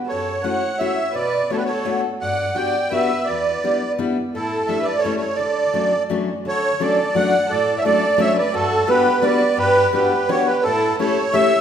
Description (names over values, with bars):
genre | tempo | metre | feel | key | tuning
musette waltz | 170 BPM | 3/4 | straight | D major | A4 = 440 Hz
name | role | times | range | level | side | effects
musette accordion | melody | 0.1-11.6 s | A4 to G5 | -19 LUFS | right 2 dB | none
warm violin | second line | 0.1-11.6 s | E4 to D5 | -25 LUFS | right 2 dB | none
fingerpicked steel-string acoustic guitar | accompaniment | 0.1-11.5 s | E2 to G4 | -23 LUFS | left 5 dB | none
room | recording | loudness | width
wet recital hall reverb, RT60 1.5 s | minimal, uncompressed stereo recording | -17 LUFS | side -8 dB against mid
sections
0.0-6.4 A section; 6.4-11.6 B section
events
none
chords
0.1 F#m7; 1.1 Bm7; 2.2 Gmaj7; 3.3 Em7; 4.3 A7sus4; 5.0 A7; 5.4 Dmaj7; 8.5 Gmaj7; 10.6 A7